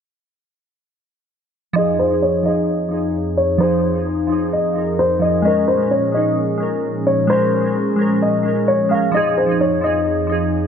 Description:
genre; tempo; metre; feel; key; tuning
hip hop; 130 BPM; 4/4; half-time; F minor; A4 = 437 Hz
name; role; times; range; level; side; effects
glassy digital keys; accompaniment; 1.7-10.7 s; F3 to Bb4; -20 LUFS; right 2 dB; chorus, low-pass filter
dark concert grand piano; melody; 1.8-10.7 s; C5 to F5; -18 LUFS; left 2 dB; low-pass filter, digital delay
hollow soft pad; sustained chords; 1.8-10.7 s; F2 to Ab4; -22 LUFS; right 1 dB; chorus, low-pass filter
room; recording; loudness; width
light reverb, small room ambience; none; -15 LUFS; side -7 dB against mid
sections
1.8-10.7 A section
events
filter sweep 1.8-10.7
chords
1.8 Fm7; 5.5 Bbm7; 9.1 Fm7

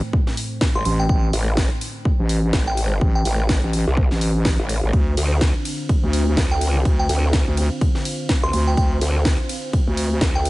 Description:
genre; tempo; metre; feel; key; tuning
bass house; 125 BPM; 4/4; swing 58% on 16ths; A minor; A4 = 440 Hz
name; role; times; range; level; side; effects
dark analog pad; sustained chords; 0.0-10.5 s; A3 to F5; -31 LUFS; equal; chorus, phaser, sidechain pumping
electronic kick drum; drums; 0.1-10.3 s; none; -20 LUFS; equal; studio reverb
house drum kit; drums; 0.3-10.5 s; hi-hat, ride cymbal, snare drum; -27 LUFS; equal; studio reverb
glassy synth bell; melody; 0.8-3.3, 6.5-10.5 s; G5 to C6; -28 LUFS; right 1 dB; chorus, tremolo, digital delay
growl bass; bass; 0.8-10.5 s; A1 to D2; -20 LUFS; equal; chorus, tube saturation, sidechain pumping
wobble bass; bass; 0.9-10.2 s; A1 to D2; -20 LUFS; equal; chorus, overdrive, sidechain pumping
room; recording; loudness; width
little or no reverb; nothing above 10.8 kHz; -17 LUFS; side -19 dB against mid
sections
0.0-10.5 A section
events
none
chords
0.0 Am; 4.9 Dm7

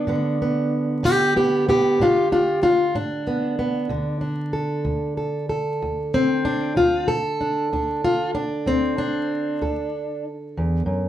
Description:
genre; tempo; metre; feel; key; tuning
acoustic country blues, solo or duo; 63 BPM (dotted quarters); 12/8; straight; unclear; A4 = 440 Hz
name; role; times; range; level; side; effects
fingerpicked plugged-in steel-string acoustic guitar; solo; 0.0-11.1 s; D2 to A4; -20 LUFS; equal; none
room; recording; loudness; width
wet studio reverb, RT60 0.6 s; heard from further back in the room, vinyl crackle; -19 LUFS; side -12 dB against mid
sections
0.0-11.1 A section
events
none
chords
0.1 G#dim; 3.9 D5

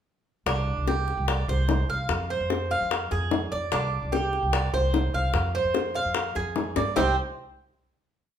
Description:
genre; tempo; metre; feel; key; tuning
latin, Cuban son and guajira; 148 BPM; 4/4; straight; unclear; A4 = 440 Hz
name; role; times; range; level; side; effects
Cuban tres; arpeggios; 0.5-7.2 s; C4 to F5; -27 LUFS; right 2 dB; none
upright bass; bass; 0.5-7.2 s; C2 to G2; -28 LUFS; equal; none
bongos; percussion; 0.5-7.1 s; none; -28 LUFS; left 5 dB; none
room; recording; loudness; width
moderate large studio reverb, RT60 0.8 s; band playing live in one room; -23 LUFS; side -9 dB against mid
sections
0.5-7.0 montuno (vamp); 7.0-8.4 final chord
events
drum fill 6.8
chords
0.5 Csus2; 2.1 Fm; 3.7 Csus2; 5.3 Fm; 7.0 C5

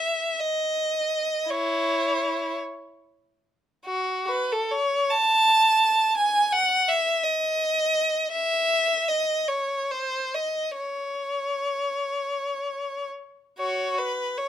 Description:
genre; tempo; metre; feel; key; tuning
classical, free, expressive piece for unaccompanied violin; 35-58 BPM (dotted quarters); 6/8; rubato; C# minor; A4 = 441 Hz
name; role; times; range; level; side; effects
clear violin; solo; 0.0-14.5 s; E4 to A5; -22 LUFS; equal; none
room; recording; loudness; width
light reverb; close, detailed microphones; -22 LUFS; side -10 dB against mid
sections
0.0-13.6 A section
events
none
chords
none

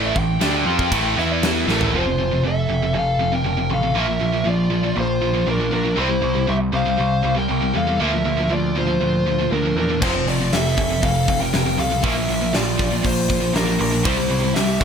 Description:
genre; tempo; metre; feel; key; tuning
heavy metal; 119 BPM; 4/4; straight; unclear; A4 = 438 Hz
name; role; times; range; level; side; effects
smooth overdriven lead guitar; melody; 0.0-14.8 s; A4 to G5; -23 LUFS; left 1 dB; none
distorted electric guitar; riff; 0.0-14.8 s; F2 to F4; -25 LUFS; left 10 dB; distortion
distorted electric guitar; riff; 0.0-14.8 s; F2 to F4; -24 LUFS; right 10 dB; overdrive
sludgy distorted guitar; riff; 0.0-1.9, 10.0-14.8 s; F2 to F4; -27 LUFS; equal; overdrive
growling picked electric bass; bass; 0.0-14.8 s; F1 to F2; -25 LUFS; equal; overdrive
big rock drum kit; drums; 0.2-1.9, 10.0-14.8 s; crash cymbal, hi-hat, kick drum, snare drum, toms; -23 LUFS; equal; none
high-gain lead guitar; second line; 1.7-14.8 s; D4 to C5; -29 LUFS; right 4 dB; distortion
room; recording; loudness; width
light reverb; none; -17 LUFS; side -7 dB against mid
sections
0.0-1.9 A section; 1.9-14.8 B section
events
lead electric guitar solo 0.0-1.9; drum fill 1.7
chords
0.0 Am; 1.2 E5; 1.7 A5; 1.9 F; 3.9 Bb; 6.0 C; 8.0 Bb/D; 10.0 F; 12.0 Bb; 14.0 C

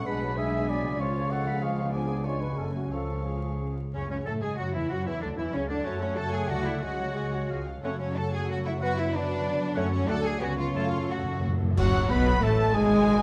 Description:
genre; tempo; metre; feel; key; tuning
classical, dramatic, fast romantic movement for symphony orchestra; 171-194 BPM; 3/4; rubato; F# minor; A4 = 440 Hz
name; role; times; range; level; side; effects
warm symphonic violin section; melody; 0.0-13.2 s; C#4 to B5; -42 LUFS; equal; none
clear oboe; second line; 0.0-13.2 s; C#4 to D6; -42 LUFS; equal; none
warm symphonic violin section; second line; 0.0-13.2 s; G#3 to A5; -43 LUFS; equal; none
mellow bassoon; accompaniment; 0.0-13.2 s; C#3 to B3; -39 LUFS; equal; none
warm symphonic viola section; accompaniment; 0.0-13.2 s; C#3 to B4; -39 LUFS; equal; none
dark French horn section; sustained chords; 0.0-13.2 s; C#3 to F#4; -37 LUFS; equal; none
concert harp; arpeggios; 0.0-13.2 s; F#2 to C#6; -37 LUFS; equal; none
bright small flute group; second line; 0.1-13.2 s; F#4 to A5; -43 LUFS; equal; none
warm clarinet; second line; 0.1-13.2 s; A3 to D5; -41 LUFS; equal; none
dark trumpet; stabs; 0.1-13.2 s; C#4 to F#5; -39 LUFS; equal; none
rich symphonic cello section; bass; 0.1-13.2 s; C#2 to A4; -37 LUFS; equal; none
rich symphonic double bass section; bass; 0.1-13.2 s; F#1 to A2; -35 LUFS; equal; none
timpani; percussion; 1.0-4.4, 9.8-11.8 s; F#2 to C#3; -36 LUFS; equal; none
cymbal swell, clash cymbals and concert bass drum; percussion; 9.8-12.4 s; none; -38 LUFS; equal; none
room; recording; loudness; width
moderate concert hall reverb, RT60 1.9 s; vinyl crackle; -28 LUFS; mono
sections
0.0-3.9 A section; 3.9-11.8 B section; 11.8-13.2 A section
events
timpani fill 10.8-11.8; band accent 11.8-12.1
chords
0.1 G#dim/B; 1.0 C#; 1.9 C#7b9; 2.6 F#m; 2.9 C#; 3.9 F#m/C#; 4.9 Dmaj9; 5.9 F#m; 6.5 D; 6.8 C#sus4; 7.5 C#; 7.8 F#m; 8.8 Bm/F#; 9.8 F#m; 10.1 D; 10.4 C#7; 10.8 F#m

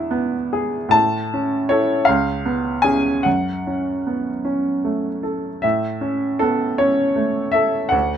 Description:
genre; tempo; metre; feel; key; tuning
classical, romantic nocturne for solo piano; 48-54 BPM (dotted quarters); 12/8; rubato; unclear; A4 = 440 Hz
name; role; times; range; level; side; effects
clear baby grand piano; solo; 0.0-8.2 s; C#2 to A5; -18 LUFS; equal; none
room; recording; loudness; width
little or no reverb; close, detailed microphones; -17 LUFS; side -9 dB against mid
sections
0.0-8.2 A section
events
none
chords
0.0 E; 0.9 A; 2.1 C#7; 3.3 F#m; 5.6 A

